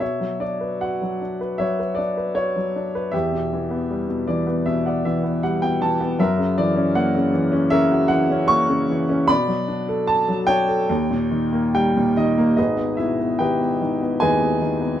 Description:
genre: classical, lyrical solo piano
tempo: 70-79 BPM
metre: 4/4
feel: rubato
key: B minor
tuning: A4 = 440 Hz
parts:
  - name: warm grand piano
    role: solo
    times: 0.0-15.0 s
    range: G#1 to C#6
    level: -18 LUFS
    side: equal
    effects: none
room: moderate studio ambience, RT60 0.5 s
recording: minimal, uncompressed stereo recording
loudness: -18 LUFS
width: side -11 dB against mid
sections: 0.0-12.6 A section; 12.6-15.0 B section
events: grand piano fill 3.9-6.2, 11.3-12.6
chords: 0.0 Bmadd9; 3.1 Emadd9; 6.2 F#7; 9.3 Bm7; 10.9 D#7; 12.6 G#m

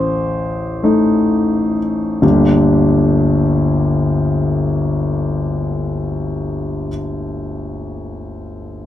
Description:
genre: neoclassical minimalist piano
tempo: 45 BPM (dotted quarters)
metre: 6/8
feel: rubato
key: G minor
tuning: A4 = 440 Hz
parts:
  - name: warm grand piano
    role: solo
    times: 0.0-8.9 s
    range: G1 to C5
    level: -15 LUFS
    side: left 1 dB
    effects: none
room: moderate small room ambience, RT60 0.5 s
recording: none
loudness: -14 LUFS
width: side -12 dB against mid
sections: 0.0-2.2 A section; 2.2-7.5 B section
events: slowing down 0.0-2.2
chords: 0.0 Adim; 2.2 Gm

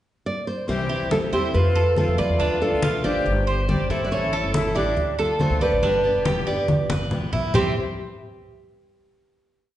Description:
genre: latin, Cuban son and guajira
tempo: 140 BPM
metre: 4/4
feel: straight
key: C major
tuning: A4 = 440 Hz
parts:
  - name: nylon-string guitar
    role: melody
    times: 0.3-7.7 s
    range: G4 to D5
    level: -24 LUFS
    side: right 1 dB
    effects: none
  - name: breathy bright jazz flute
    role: second line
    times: 0.7-7.7 s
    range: D4 to E5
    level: -31 LUFS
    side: left 3 dB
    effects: none
  - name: picked steel-string acoustic guitar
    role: accompaniment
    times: 0.7-7.7 s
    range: B2 to G4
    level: -29 LUFS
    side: left 3 dB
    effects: none
  - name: upright bass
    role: bass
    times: 0.7-7.7 s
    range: E1 to F3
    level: -26 LUFS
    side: equal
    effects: none
  - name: congas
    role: percussion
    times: 0.7-7.6 s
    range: none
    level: -27 LUFS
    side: left 1 dB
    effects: none
  - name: Cuban tres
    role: arpeggios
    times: 0.9-7.7 s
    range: C4 to D5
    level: -27 LUFS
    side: right 3 dB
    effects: none
room: wet recital hall reverb, RT60 1.4 s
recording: recorded in a church or concert hall, nothing above 10.5 kHz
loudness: -20 LUFS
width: side -13 dB against mid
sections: 0.0-0.7 pickup bar; 0.7-7.5 verse; 7.5-9.3 final chord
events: drum fill 6.7-7.5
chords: 0.0 N.C.; 0.7 C; 1.5 F; 2.4 Dm; 3.3 Gsus4; 4.1 A; 5.0 Dm; 5.8 G; 7.5 C

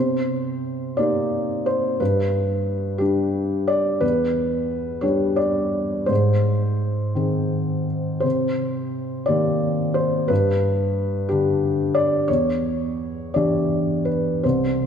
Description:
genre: neoclassical minimalist piano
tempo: 52-62 BPM (dotted quarters)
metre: 6/8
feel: rubato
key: unclear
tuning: A4 = 440 Hz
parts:
  - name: felt-muted upright piano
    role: solo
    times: 0.0-14.9 s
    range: C2 to D5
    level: -19 LUFS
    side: equal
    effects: none
room: moderate concert hall reverb, RT60 2.2 s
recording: none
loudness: -19 LUFS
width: side -7 dB against mid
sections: 0.0-14.9 A section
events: none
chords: 0.0 Cm7; 2.0 G; 4.0 Em7; 6.1 Ab; 8.2 Cm7; 10.3 G; 12.3 Em7

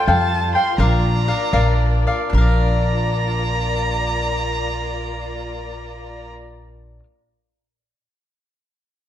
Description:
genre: mexican folk, mariachi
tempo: 73-86 BPM (dotted quarters)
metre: 6/8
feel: rubato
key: Bb major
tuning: A4 = 440 Hz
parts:
  - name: rich violin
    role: melody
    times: 0.0-6.3 s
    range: A5 to C6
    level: -26 LUFS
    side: right 2 dB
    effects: none
  - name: cavaquinho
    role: accompaniment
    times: 0.0-7.1 s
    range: D4 to G5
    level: -22 LUFS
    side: left 2 dB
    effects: none
  - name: muted studio violin section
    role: sustained chords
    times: 0.0-6.3 s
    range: G3 to D5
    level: -27 LUFS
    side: left 3 dB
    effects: none
  - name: upright bass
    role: bass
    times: 0.1-7.0 s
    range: Bb1 to F2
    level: -20 LUFS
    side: equal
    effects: none
room: light reverb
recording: dark, warm production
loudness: -17 LUFS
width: side -11 dB against mid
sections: 0.0-2.3 A section; 2.3-5.5 B section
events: slowing down 0.0-2.3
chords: 0.0 Fadd9; 0.8 Bb

